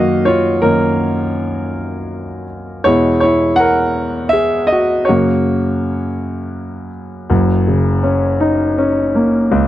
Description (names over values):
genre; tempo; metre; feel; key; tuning
pop; 54 BPM (dotted quarters); 6/8; straight; F# major; A4 = 439 Hz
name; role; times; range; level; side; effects
warm concert grand piano; solo; 0.0-9.7 s; F#1 to F#5; -13 LUFS; equal; none
room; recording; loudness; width
light reverb; dry, close 1970s-style studio recording; -13 LUFS; side -13 dB against mid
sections
0.0-7.3 A section; 7.3-9.7 A section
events
grand piano solo 0.0-7.3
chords
0.0 F#6; 2.9 E; 5.1 F#; 7.3 F#6